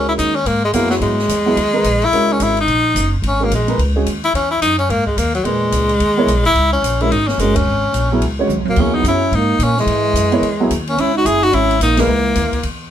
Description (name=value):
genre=modal jazz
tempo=217 BPM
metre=4/4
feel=swing 61% on 8ths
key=C# dorian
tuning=A4 = 440 Hz
part: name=bright tenor saxophone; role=melody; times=0.0-12.7 s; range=F#3 to G#4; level=-16 LUFS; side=left 2 dB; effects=none
part: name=warm grand piano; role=accompaniment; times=0.0-12.1 s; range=A#2 to C#5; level=-19 LUFS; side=right 2 dB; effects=none
part: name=upright bass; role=bass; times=0.0-12.9 s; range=F#1 to A#2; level=-20 LUFS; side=equal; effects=none
part: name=open jazz drum kit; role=drums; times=0.2-12.7 s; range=crash cymbal, hi-hat, kick drum, ride cymbal, snare drum, toms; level=-25 LUFS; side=equal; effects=none
part: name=breathy trombone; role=second line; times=8.7-12.6 s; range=E3 to E4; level=-21 LUFS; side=right 5 dB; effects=none
room=moderate small room reverb, RT60 0.5 s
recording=band playing live in one room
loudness=-13 LUFS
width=side -10 dB against mid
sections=0.0-12.9 A section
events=band accent 7.5, 11.9; drum fill 8.5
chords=0.0 C#m69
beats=0.18 0.46 0.74 | 1.02 1.29 1.57 1.85 | 2.13 2.40 2.68 2.96 | 3.23 3.51 3.79 4.07 | 4.34 4.62 4.90 5.17 | 5.45 5.73 6.01 6.28 | 6.56 6.84 7.11 7.39 | 7.67 7.94 8.22 8.49 | 8.77 9.05 9.32 9.60 | 9.88 10.15 10.43 10.70 | 10.98 11.26 11.53 11.81 | 12.08 12.36 12.63